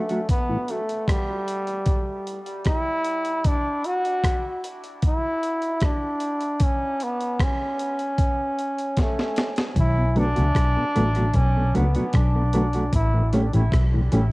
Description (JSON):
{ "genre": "dub reggae", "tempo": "76 BPM", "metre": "4/4", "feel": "straight", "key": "unclear", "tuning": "A4 = 439 Hz", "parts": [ { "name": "bright trombone", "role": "melody", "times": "0.0-13.3 s", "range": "G3 to F#4", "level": "-25 LUFS", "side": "equal", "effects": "cassette tape, dub echo" }, { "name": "mellow electric guitar", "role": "accompaniment", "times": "0.1-0.2, 10.2-14.2 s", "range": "E3 to G4", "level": "-28 LUFS", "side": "right 1 dB", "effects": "lush chorus, cassette tape, dub echo" }, { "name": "breakbeat sampler-style drum kit", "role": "drums", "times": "0.1-14.3 s", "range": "hi-hat, kick drum, rim click, snare drum", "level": "-23 LUFS", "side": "equal", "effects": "cassette tape" }, { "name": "mellow tonewheel organ", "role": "accompaniment", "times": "0.5-0.6, 10.0-14.2 s", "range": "A2 to C#4", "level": "-30 LUFS", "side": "left 1 dB", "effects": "slow rotary speaker, cassette tape, dub echo" }, { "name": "vintage muted fingered electric bass", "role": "bass", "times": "9.8-14.3 s", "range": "A1 to C#2", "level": "-21 LUFS", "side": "equal", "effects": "tube saturation" }, { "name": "congas", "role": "percussion", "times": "9.8-10.0 s", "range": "none", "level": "barely audible", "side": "none", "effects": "none" } ], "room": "digital ambience", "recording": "home recording on cassette", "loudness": "-20 LUFS", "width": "side -23 dB against mid", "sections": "0.0-14.3 A section", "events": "drum fill 9.0-9.8; part muted 9.8-14.3; filter sweep 12.9-14.3", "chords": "0.3 A5; 3.4 N.C.; 9.8 Bm7; 12.9 A7", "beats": "| 0.29 1.08 1.87 2.66 | 3.45 4.24 5.03 5.82 | 6.61 7.40 8.19 8.98 | 9.77 10.56 11.35 12.14 | 12.93 13.72" }